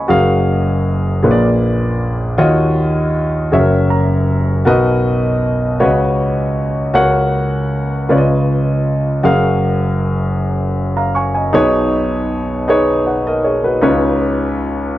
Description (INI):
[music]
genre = gospel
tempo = 52 BPM (dotted quarters)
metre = 6/8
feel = straight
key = F# major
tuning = A4 = 440 Hz
[part]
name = warm concert grand piano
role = solo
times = 0.0-15.0 s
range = F#1 to C#6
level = -13 LUFS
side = equal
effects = none
[sound]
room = light reverb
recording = dry, close 1970s-style studio recording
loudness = -13 LUFS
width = side -14 dB against mid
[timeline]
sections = 0.1-15.0 A section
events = grand piano fill 3.5-4.7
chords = 0.1 F#maj9; 1.2 A#7b9; 2.4 D#m9; 3.5 F#7; 4.7 Bmaj7; 5.8 C#9sus4; 7.0 F#/C#; 8.1 C#9; 9.2 F#maj9; 11.5 B69; 13.8 C#9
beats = | 0.08 1.23 | 2.38 3.52 | 4.67 5.81 | 6.96 8.10 | 9.25 10.39 | 11.54 12.69 | 13.83 14.98